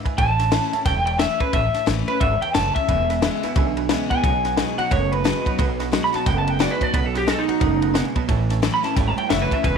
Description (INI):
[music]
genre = rockabilly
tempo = 178 BPM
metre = 4/4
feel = swing 62% on 8ths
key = unclear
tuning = A4 = 440 Hz
[part]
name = picked steel-string acoustic guitar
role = accompaniment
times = 0.0-9.8 s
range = E2 to F#4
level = -28 LUFS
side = left 11 dB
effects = none
[part]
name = tack piano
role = accompaniment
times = 0.0-9.8 s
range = B4 to B5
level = -32 LUFS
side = right 16 dB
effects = none
[part]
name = upright bass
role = bass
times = 0.1-9.8 s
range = E1 to B1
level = -24 LUFS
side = right 2 dB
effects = none
[part]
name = compact cocktail drum kit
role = drums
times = 0.1-9.7 s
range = kick drum, ride cymbal, snare drum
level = -24 LUFS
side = left 3 dB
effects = none
[part]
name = electric guitar through a small old amp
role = melody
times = 0.2-9.8 s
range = D#4 to B5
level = -22 LUFS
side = right 1 dB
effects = tape echo
[part]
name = electric guitar through a small old amp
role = riff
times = 2.9-9.8 s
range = E2 to A3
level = -28 LUFS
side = right 16 dB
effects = wide subtle chorus
[sound]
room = small room ambience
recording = 1960s-style stereo with parts hard left and right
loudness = -18 LUFS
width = side -6 dB against mid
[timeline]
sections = 0.0-9.8 A section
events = clean electric guitar solo 0.0-9.8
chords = 0.2 A; 2.9 E; 4.2 B; 8.3 A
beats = | 0.18 0.52 0.86 1.20 | 1.53 1.87 2.21 2.55 | 2.88 3.22 3.56 3.90 | 4.24 4.57 4.91 5.25 | 5.59 5.92 6.26 6.60 | 6.94 7.28 7.61 7.95 | 8.29 8.63 8.97 9.30 | 9.64